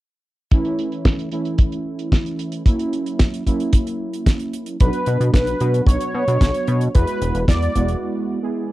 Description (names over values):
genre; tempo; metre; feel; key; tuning
italo disco; 112 BPM; 4/4; straight; A major; A4 = 440 Hz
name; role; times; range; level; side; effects
analog synth brass; stabs; 0.5-8.7 s; E3 to G#4; -24 LUFS; right 2 dB; chorus
damped 70s drum kit; drums; 0.5-8.0 s; hi-hat, snare drum; -25 LUFS; right 1 dB; low-pass filter on hats, small room ambience, low-pass filter on snare, low-pass filter on room
kick drum; drums; 0.5-7.9 s; none; -15 LUFS; equal; small room ambience
wide unison lead; melody; 4.8-8.0 s; B4 to D5; -23 LUFS; equal; tape echo
chorused synth bass; bass; 4.8-8.0 s; E1 to B2; -20 LUFS; equal; none
room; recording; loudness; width
little or no reverb; dry, close 1970s-style studio recording; -17 LUFS; side -17 dB against mid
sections
0.5-8.7 A section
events
break 8.0-8.7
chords
0.5 A; 2.7 F#7; 4.8 Bm; 6.9 Eadd9